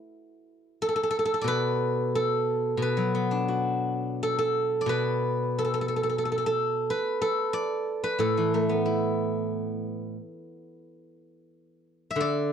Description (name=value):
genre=chinese traditional, Chinese solo plucked strings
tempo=91 BPM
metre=4/4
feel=rubato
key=A zhi mode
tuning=A4 = 440 Hz
part: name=steel-string zither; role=solo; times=0.0-12.5 s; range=A2 to E5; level=-25 LUFS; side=equal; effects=none
room=studio reverb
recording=dry, close 1970s-style studio recording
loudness=-25 LUFS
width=side -8 dB against mid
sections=0.0-12.5 A section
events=none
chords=none